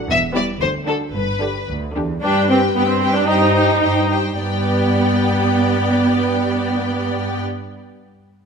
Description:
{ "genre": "quick classical-period movement for string orchestra", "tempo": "103-118 BPM", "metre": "2/4", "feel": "straight", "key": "G major", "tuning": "A4 = 440 Hz", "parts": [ { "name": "rich symphonic violin section", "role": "second line", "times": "0.0-7.4 s", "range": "E4 to D5", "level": "-23 LUFS", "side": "left 2 dB", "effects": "none" }, { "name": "rich symphonic viola section", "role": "accompaniment", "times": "0.0-7.4 s", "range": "D3 to Eb4", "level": "-19 LUFS", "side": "right 2 dB", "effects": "none" }, { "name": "rich studio violin section", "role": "melody", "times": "0.1-7.4 s", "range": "A4 to G5", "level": "-24 LUFS", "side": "left 4 dB", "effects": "none" }, { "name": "rich symphonic cello section", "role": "bass", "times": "0.1-7.4 s", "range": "D2 to G2", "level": "-22 LUFS", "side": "right 2 dB", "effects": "none" }, { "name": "warm symphonic double bass section", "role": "bass", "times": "0.1-2.1 s", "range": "E1 to D2", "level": "-31 LUFS", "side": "right 2 dB", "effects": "none" } ], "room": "moderate scoring stage reverb, RT60 1.7 s", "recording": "close, detailed microphones", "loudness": "-15 LUFS", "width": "side -6 dB against mid", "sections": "0.0-2.2 A section; 2.2-4.4 B section; 4.4-6.7 C section", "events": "slowing down 1.7-4.4", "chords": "0.1 Em; 0.6 D; 1.1 G; 3.3 Cm/G; 4.4 G", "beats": "| 0.10 0.62 | 1.15 1.69 | 2.23 2.75 | 3.28 3.83 | 4.40 4.97 | 5.53 6.10" }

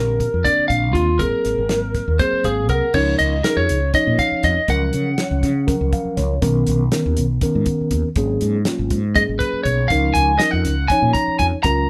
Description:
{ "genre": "electric jazz fusion", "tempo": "241 BPM (eighths)", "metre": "7/8", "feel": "straight", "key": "Db mixolydian", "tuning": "A4 = 441 Hz", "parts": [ { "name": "lightly driven lead guitar", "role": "melody", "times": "0.0-6.1, 9.2-11.9 s", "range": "F4 to Bb5", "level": "-21 LUFS", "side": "equal", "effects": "none" }, { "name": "mellow tine electric piano", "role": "accompaniment", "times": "0.0-11.9 s", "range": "D3 to Gb5", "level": "-25 LUFS", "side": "equal", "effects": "none" }, { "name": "mellow fretless electric bass", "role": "bass", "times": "0.0-11.9 s", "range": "Ab1 to Db3", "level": "-23 LUFS", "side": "equal", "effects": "none" }, { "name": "damped 70s drum kit", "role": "drums", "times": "0.2-11.8 s", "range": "crash cymbal, hi-hat, kick drum, snare drum", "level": "-26 LUFS", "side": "equal", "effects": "none" } ], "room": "light reverb", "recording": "band playing live in one room", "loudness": "-18 LUFS", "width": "mono", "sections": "0.0-2.9 A section; 2.9-11.9 B section", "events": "tine electric piano fill 2.2-2.9, 5.7-6.4", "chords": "0.0 Bb69; 1.2 Ab9; 2.9 Db69; 4.7 Gbmaj7/Db; 6.4 Cbmaj9; 8.2 Ab9sus4; 9.9 Db69", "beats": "0.20 0.45 0.70 0.94 | 1.19 1.44 1.69 1.94 2.19 2.44 2.69 | 2.94 3.19 3.44 3.69 3.93 4.18 4.43 | 4.68 4.93 5.18 5.43 5.68 5.93 6.17 | 6.42 6.67 6.92 7.17 7.42 7.67 7.92 | 8.17 8.41 8.66 8.91 9.16 9.41 9.66 | 9.91 10.16 10.41 10.65 10.90 11.15 11.40 | 11.65" }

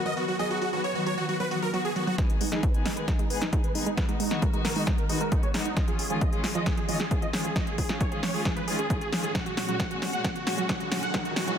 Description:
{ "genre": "uplifting trance", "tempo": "134 BPM", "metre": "4/4", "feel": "straight", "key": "G# dorian", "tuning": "A4 = 440 Hz", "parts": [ { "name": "supersaw chords", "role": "melody", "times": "0.0-11.6 s", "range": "D#4 to F#5", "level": "-31 LUFS", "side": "right 1 dB", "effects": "sidechain pumping, low-pass filter, ping-pong delay" }, { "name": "dark concert grand piano", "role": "second line", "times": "0.0-0.8 s", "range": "G#4 to A#4", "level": "-36 LUFS", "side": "equal", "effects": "ping-pong delay" }, { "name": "dark chamber string section", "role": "sustained chords", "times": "0.0-11.6 s", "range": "A#2 to G#4", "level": "-33 LUFS", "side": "left 2 dB", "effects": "sidechain pumping" }, { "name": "wide unison pluck", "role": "arpeggios", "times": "0.1-11.5 s", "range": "E#3 to G#4", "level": "-34 LUFS", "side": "right 4 dB", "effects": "vintage 12-bit sampler grit, sidechain pumping, ping-pong delay" }, { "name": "techno drum kit", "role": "drums", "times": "0.1-11.6 s", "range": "hi-hat, snare drum", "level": "-32 LUFS", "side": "equal", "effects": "low-pass filter on hats, low-pass filter on snare" }, { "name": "electronic kick drum", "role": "drums", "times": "2.2-11.2 s", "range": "none", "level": "-28 LUFS", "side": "equal", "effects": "none" }, { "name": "riser", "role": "sound effects", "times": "10.1-11.6 s", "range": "none", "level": "-38 LUFS", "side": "right 2 dB", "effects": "none" } ], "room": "light reverb", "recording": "dense, heavily limited modern master, high-pass filter", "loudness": "-25 LUFS", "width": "side -8 dB against mid", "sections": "0.0-2.2 A section; 2.2-11.6 B section", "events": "build-up 2.2-11.6; drum fill 2.2-11.6; filter sweep on supersaw synth 2.2-11.6; filter sweep on synth arpeggio sound 2.2-11.6; filter sweep 2.2-11.6; riser 10.1-11.6", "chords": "0.0 B; 2.2 G#m; 5.8 C#add9; 9.3 F#add9", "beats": "| 0.39 0.84 1.29 1.74 | 2.18 2.63 3.08 3.53 | 3.98 4.42 4.87 5.32 | 5.77 6.21 6.66 7.11 | 7.56 8.01 8.45 8.90 | 9.35 9.80 10.24 10.69 | 11.14" }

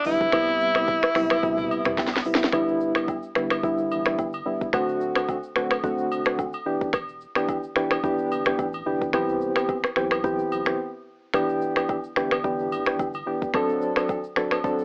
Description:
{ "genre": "afrobeats", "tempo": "109 BPM", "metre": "4/4", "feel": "swing 55% on 16ths", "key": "E minor", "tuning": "A4 = 438 Hz", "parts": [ { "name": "bright tenor saxophone", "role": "melody", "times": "0.0-1.9 s", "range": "E4", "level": "-26 LUFS", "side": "equal", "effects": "cassette tape" }, { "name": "afro-pop drum kit", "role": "drums", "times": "0.0-14.8 s", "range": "finger snaps, hi-hat, kick drum, rim click, shaker, snare drum, toms", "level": "-27 LUFS", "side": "equal", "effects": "cassette tape" }, { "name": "soft electric-piano-like synth keys", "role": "accompaniment", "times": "0.1-14.8 s", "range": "C3 to A4", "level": "-27 LUFS", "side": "equal", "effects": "chorus, tremolo" }, { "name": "warm sub bass", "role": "bass", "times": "0.1-14.8 s", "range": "D1 to E2", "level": "-46 LUFS", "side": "equal", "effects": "none" }, { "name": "agogo bells and woodblock", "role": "percussion", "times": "0.3-14.6 s", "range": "none", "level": "-37 LUFS", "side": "equal", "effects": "none" } ], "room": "moderate booth ambience, RT60 0.2 s", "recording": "home recording on cassette, AM radio sound", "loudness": "-25 LUFS", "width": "mono", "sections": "0.0-2.5 A section; 2.5-14.8 B section", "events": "drum fill 2.0-2.5; break 10.8-11.3", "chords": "0.3 Cmaj7; 2.5 Em7; 4.7 D7; 6.7 Em7; 9.1 Cmaj7; 11.3 Em7; 13.5 D7", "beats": "| 0.33 0.88 1.43 1.98 | 2.53 3.08 3.63 4.18 | 4.73 5.29 5.83 6.39 | 6.94 7.49 8.04 8.59 | 9.14 9.69 10.24 10.79 | 11.34 11.89 12.44 12.99 | 13.54 14.09 14.64" }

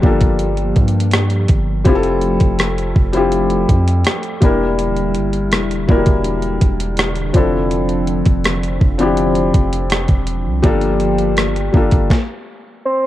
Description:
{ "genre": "contemporary R&B", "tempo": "82 BPM", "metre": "4/4", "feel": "straight", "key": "unclear", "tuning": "A4 = 444 Hz", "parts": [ { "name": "felt-muted upright piano", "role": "accompaniment", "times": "0.0-12.1 s", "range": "F3 to Bb4", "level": "-18 LUFS", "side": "left 3 dB", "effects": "none" }, { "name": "warm analog pad", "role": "sustained chords", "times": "0.0-12.1 s", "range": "D3 to A4", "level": "-22 LUFS", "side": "right 1 dB", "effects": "chorus" }, { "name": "long sustained 808-style bass", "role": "bass", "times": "0.0-12.1 s", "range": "E1 to G2", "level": "-19 LUFS", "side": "equal", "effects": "none" }, { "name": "crisp 8-bit digital drum machine", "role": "drums", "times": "0.0-12.3 s", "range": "hi-hat, kick drum, rim click, snare drum", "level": "-15 LUFS", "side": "equal", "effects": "none" }, { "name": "soft octave-layered synth lead", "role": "melody", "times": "12.9-13.1 s", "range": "C5", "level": "-14 LUFS", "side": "right 1 dB", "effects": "chorus" } ], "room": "moderate spring reverb, RT60 2.6 s", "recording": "dark, warm production", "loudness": "-13 LUFS", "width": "side -14 dB against mid", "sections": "0.0-13.1 A section", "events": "stop 12.1-13.1", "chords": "0.0 Gm7; 1.9 Fmaj7; 4.4 Em7b5; 7.3 Dm7/F; 10.6 Gm7; 12.1 N.C.", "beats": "0.40 1.13 | 1.86 2.59 3.32 4.05 | 4.79 5.52 6.25 6.98 | 7.71 8.44 9.18 9.91 | 10.64 11.37 12.10 12.83" }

